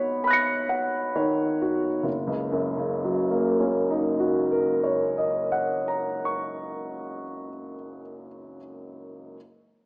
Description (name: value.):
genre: classical, impressionist solo piano.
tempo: 24 BPM (dotted quarters).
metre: 6/8.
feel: rubato.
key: Gb major.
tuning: A4 = 440 Hz.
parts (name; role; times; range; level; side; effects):
clear grand piano; solo; 0.0-9.4 s; Gb1 to Db7; -24 LUFS; equal; none.
room: wet recital hall reverb, RT60 1.5 s.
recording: small speaker sound.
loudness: -22 LUFS.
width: side -30 dB against mid.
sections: 0.0-2.0 A section; 2.0-7.1 B section.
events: slowing down 0.0-2.0.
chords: 0.0 Abm11; 2.0 Gb6.